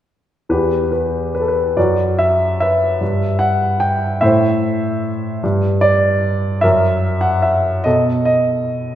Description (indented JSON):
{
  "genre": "classical, lyrical solo piano",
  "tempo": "49 BPM (dotted quarters)",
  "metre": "6/8",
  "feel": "uneven beats, rubato",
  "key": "E minor",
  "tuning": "A4 = 441 Hz",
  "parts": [
    { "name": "clear grand piano", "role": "solo", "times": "0.5-9.0 s", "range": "E2 to G5", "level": "-14 LUFS", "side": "equal", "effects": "none" }
  ],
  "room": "wet scoring stage reverb, RT60 1.8 s",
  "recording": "heard from further back in the room",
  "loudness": "-14 LUFS",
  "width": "side -11 dB against mid",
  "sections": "0.5-9.0 A section",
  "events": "none",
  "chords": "0.5 Em; 1.8 B5/F#; 3.0 Gmaj7; 4.2 Am; 5.4 N.C.; 6.6 F#7; 7.9 B7"
}